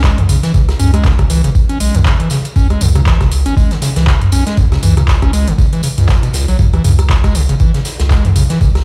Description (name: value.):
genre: acid house.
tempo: 119 BPM.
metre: 4/4.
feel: swing 57% on 16ths.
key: C# minor.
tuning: A4 = 439 Hz.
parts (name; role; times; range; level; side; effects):
overdriven acid bass; riff; 0.0-8.7 s; C#2 to C#4; -19 LUFS; equal; tube saturation, sidechain pumping, tape echo.
round analog bass; bass; 0.0-8.8 s; G#1 to C#2; -17 LUFS; equal; sidechain pumping.
big rock drum kit; drums; 0.0-8.8 s; hi-hat, snare drum; -33 LUFS; equal; high-pass filter on hats, high-pass filter on snare, high-pass filter on room.
booming analog drum machine; drums; 0.0-8.8 s; handclaps, hi-hat, rim click, toms; -19 LUFS; equal; none.
electronic kick drum; drums; 0.0-8.7 s; none; -15 LUFS; equal; overdrive.
tambourine; percussion; 0.0-8.8 s; none; -32 LUFS; equal; none.
room: little or no reverb.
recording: played on a big sound system in a bare room, large studio reverb.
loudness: -12 LUFS.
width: mono.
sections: 0.0-8.8 A section.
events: none.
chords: 0.0 C#5.